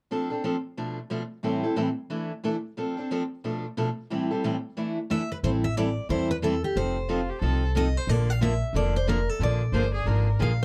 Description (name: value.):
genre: acoustic string swing (jazz manouche).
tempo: 181 BPM.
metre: 4/4.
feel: swing 61% on 8ths.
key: A minor.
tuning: A4 = 440 Hz.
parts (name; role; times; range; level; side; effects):
picked steel-string acoustic guitar; accompaniment; 0.1-10.5 s; A2 to A4; -30 LUFS; equal; none.
picked steel-string acoustic guitar; melody; 5.1-10.6 s; G4 to F5; -32 LUFS; equal; none.
upright bass; bass; 5.4-10.6 s; F1 to E2; -28 LUFS; equal; none.
warm violin; second line; 7.1-7.7, 9.7-10.3 s; F4 to C5; -36 LUFS; equal; none.
room: light reverb.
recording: dark, warm production.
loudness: -27 LUFS.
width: mono.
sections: 0.1-5.4 A section; 5.4-10.6 B section.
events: none.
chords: 0.1 F6; 0.8 Bm7b5; 1.4 Am7; 2.1 E7sus4; 2.8 F6; 3.4 Bm7b5; 4.1 Am7; 4.8 E7sus4; 5.4 Am7; 6.8 F7; 8.1 Bbmaj7; 9.4 Bb7.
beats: | 0.11 0.44 0.77 1.11 | 1.44 1.77 2.11 2.44 | 2.77 3.11 3.44 3.77 | 4.10 4.44 4.77 5.10 | 5.43 5.76 6.09 6.42 | 6.76 7.09 7.42 7.75 | 8.08 8.41 8.74 9.07 | 9.40 9.73 10.07 10.40.